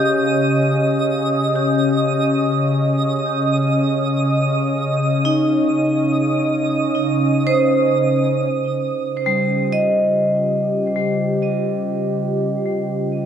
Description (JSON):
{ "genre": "ambient", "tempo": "free time", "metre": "none", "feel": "none", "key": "Db lydian", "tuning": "A4 = 439 Hz", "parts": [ { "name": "warm analog pad", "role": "sustained chords", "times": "0.0-13.3 s", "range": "Db3 to Eb5", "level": "-20 LUFS", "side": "equal", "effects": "chorus" }, { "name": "vibraphone with hard mallets", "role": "arpeggios", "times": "0.0-13.3 s", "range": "G3 to Eb5", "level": "-20 LUFS", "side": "right 1 dB", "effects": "analog delay" }, { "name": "organ-like drone", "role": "drone", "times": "0.0-8.6 s", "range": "Db3", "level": "-26 LUFS", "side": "left 1 dB", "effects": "ensemble chorus, built-in reverb" }, { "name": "twinkling granular texture", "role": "texture", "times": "0.0-8.5 s", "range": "Eb6", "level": "-26 LUFS", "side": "right 3 dB", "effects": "built-in reverb" } ], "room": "wet spring reverb, RT60 2.6 s", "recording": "echo-heavy mix", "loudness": "-16 LUFS", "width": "side -8 dB against mid", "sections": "0.0-8.5 A section; 8.5-13.3 B section", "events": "filter sweep on analog synth pad 8.5-13.3", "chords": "0.0 Dbmaj7(b5, no3); 8.5 Dbmaj9#11", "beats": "free time" }